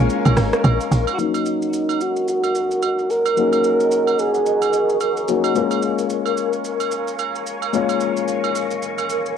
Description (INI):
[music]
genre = amapiano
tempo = 110 BPM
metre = 4/4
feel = swing 58% on 16ths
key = Eb minor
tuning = A4 = 440 Hz
[part]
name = growling alto saxophone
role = melody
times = 0.0-5.3 s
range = Db4 to Bb4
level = -20 LUFS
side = right 1 dB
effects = low-pass filter, cassette tape, analog delay
[part]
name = warm baby grand piano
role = accompaniment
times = 0.0-9.4 s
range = Gb3 to Db5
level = -23 LUFS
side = left 9 dB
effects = low-pass filter, cassette tape
[part]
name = phased string machine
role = sustained chords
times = 0.0-9.4 s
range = Bb4 to Db6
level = -25 LUFS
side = right 1 dB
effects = ensemble chorus, phaser, low-pass filter, cassette tape
[part]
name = tight log drum bass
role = bass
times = 0.0-1.1 s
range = Ab1 to Bb1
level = -16 LUFS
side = right 1 dB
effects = none
[part]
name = deep house drum kit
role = drums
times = 0.1-9.4 s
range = hi-hat, rim click, shaker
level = -29 LUFS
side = right 2 dB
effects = overdrive, cassette tape
[part]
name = agogo bells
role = percussion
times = 0.3-9.1 s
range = none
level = -28 LUFS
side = right 11 dB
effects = none
[sound]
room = light reverb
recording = home recording on cassette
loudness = -17 LUFS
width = side -7 dB against mid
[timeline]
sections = 0.0-1.2 A section; 1.2-9.4 B section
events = drop 0.0-1.2; break 0.1-1.2; filter sweep 1.2-9.4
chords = 0.0 Bbm7; 1.2 Ebm7; 5.6 Bbm7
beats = 0.10 0.64 | 1.19 1.74 2.28 2.83 | 3.37 3.92 4.46 5.01 | 5.55 6.10 6.64 7.19 | 7.74 8.28 8.83 9.37